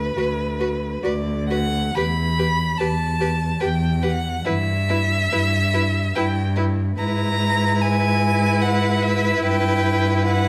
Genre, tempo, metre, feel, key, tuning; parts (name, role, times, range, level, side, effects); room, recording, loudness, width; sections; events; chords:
classical, slow romantic movement for string quartet; 72 BPM; 3/4; uneven beats, rubato; A4 = 438 Hz
warm violin; melody; 0.0-10.5 s; B4 to B5; -26 LUFS; equal
warm cello; bass; 0.0-10.5 s; D2 to G#2; -24 LUFS; equal
warm violin; second line; 0.2-10.5 s; B4; -30 LUFS; equal
warm viola; accompaniment; 0.2-10.5 s; E4 to G4; -29 LUFS; equal
wet recital hall reverb, RT60 1.5 s; -21 LUFS; mono
0.0-10.5 A section
0.0 Bm/D; 2.0 Em; 4.5 Em/G; 7.0 E/G#; 9.4 Em/G